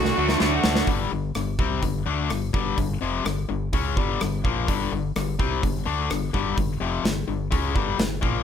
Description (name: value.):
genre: classic rock.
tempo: 127 BPM.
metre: 4/4.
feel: straight.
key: unclear.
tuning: A4 = 439 Hz.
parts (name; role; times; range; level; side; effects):
raspy tenor saxophone; melody; 0.0-0.6 s; F#4; -28 LUFS; right 3 dB; digital delay.
tonewheel organ; sustained chords; 0.0-0.8 s; F#3 to A4; -37 LUFS; right 3 dB; none.
crunchy overdriven guitar; riff; 0.0-0.9 s; D3 to F#4; -25 LUFS; right 7 dB; phaser.
distorted electric guitar; riff; 0.0-8.4 s; F2 to F#4; -26 LUFS; left 9 dB; overdrive.
growling fingered electric bass; bass; 0.0-8.4 s; F1 to D2; -29 LUFS; right 1 dB; overdrive.
big rock drum kit; drums; 0.0-8.3 s; hi-hat, kick drum, rim click, snare drum; -26 LUFS; right 1 dB; none.
room: little or no reverb.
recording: none.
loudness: -22 LUFS.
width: side -8 dB against mid.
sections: 0.9-8.4 A section.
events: drum fill 0.0-0.9.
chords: 0.0 D; 0.9 G5.